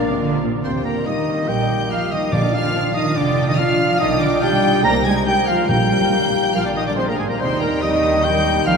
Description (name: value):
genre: quick classical-period movement for symphony orchestra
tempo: 142 BPM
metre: 4/4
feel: straight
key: Eb major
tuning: A4 = 440 Hz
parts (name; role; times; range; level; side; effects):
- clear studio violin section; melody; 0.0-8.8 s; F5 to Bb6; -27 LUFS; left 4 dB; none
- clear oboe; second line; 0.0-8.8 s; Ab4 to Bb5; -27 LUFS; right 1 dB; none
- mellow clarinet; second line; 0.0-8.8 s; D4 to G4; -32 LUFS; right 1 dB; none
- silver concert flute; second line; 0.0-8.8 s; Ab4 to Bb5; -26 LUFS; left 1 dB; none
- warm studio violin section; second line; 0.0-8.8 s; Bb4 to G5; -31 LUFS; left 2 dB; none
- mellow bassoon; accompaniment; 0.0-8.8 s; G3 to D4; -26 LUFS; right 1 dB; none
- warm studio viola section; accompaniment; 0.0-8.8 s; Eb3 to Eb4; -30 LUFS; right 1 dB; none
- warm French horn section; sustained chords; 0.0-8.8 s; F3 to Bb4; -24 LUFS; left 3 dB; none
- mellow trumpet section; stabs; 0.0-8.8 s; Ab4 to Bb5; -24 LUFS; equal; none
- dark studio double bass section; bass; 0.0-8.8 s; F1 to Eb2; -26 LUFS; right 4 dB; none
- warm studio cello section; bass; 0.1-8.8 s; Ab2 to Bb3; -23 LUFS; right 2 dB; none
- timpani; percussion; 2.3-2.9, 5.7-6.3 s; Bb2; -28 LUFS; equal; none
room: wet cathedral reverb, RT60 4.7 s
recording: none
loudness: -16 LUFS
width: side -5 dB against mid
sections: 0.6-8.8 A section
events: none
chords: 0.0 Bb; 0.6 Eb; 2.3 Bb; 4.0 G7/B; 4.8 Cm; 5.7 Eb/Bb; 6.5 Bb; 7.4 Eb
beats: 0.21 | 0.65 1.07 1.49 1.91 | 2.33 2.75 3.17 3.58 | 4.00 4.42 4.84 5.26 | 5.69 6.12 6.55 6.97 | 7.40 7.83 8.25 8.67